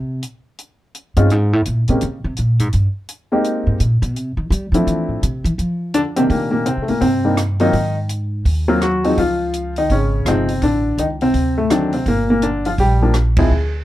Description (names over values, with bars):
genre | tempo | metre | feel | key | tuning
jazz piano trio | 167 BPM | 4/4 | swing 62% on 8ths | C minor | A4 = 439 Hz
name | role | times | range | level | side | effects
upright bass | bass | 0.0-13.8 s | G1 to G3 | -18 LUFS | equal | none
compact cocktail drum kit | drums | 0.2-13.4 s | hi-hat, kick drum, ride cymbal, rim click | -26 LUFS | right 2 dB | none
warm baby grand piano | melody | 1.2-13.7 s | A2 to Ab4 | -17 LUFS | left 1 dB | none
room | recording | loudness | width
light reverb | dark, warm production | -15 LUFS | side -14 dB against mid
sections
0.0-6.3 A section; 6.3-13.8 B section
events
upright bass solo 0.0-6.3; band accent 13.3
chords
0.0 N.C.; 0.6 Dbmaj7(no3) (rootless); 2.0 Bbm7; 2.7 N.C.; 3.4 Abmaj9; 4.9 Dm9; 5.6 N.C.; 6.3 Cm9; 7.7 Ab7(no3); 9.2 Dbmaj9; 10.6 Am; 11.3 D7b9; 12.1 Gm7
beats
0.22 | 0.58 0.94 1.29 1.65 | 2.01 2.37 2.72 3.08 | 3.44 3.79 4.15 4.51 | 4.87 5.22 5.58 5.94 | 6.30 6.66 7.02 7.38 | 7.74 8.10 8.46 8.81 | 9.18 9.54 9.90 10.26 | 10.62 10.98 11.34 11.70 | 12.06 12.42 12.78 13.14 | 13.50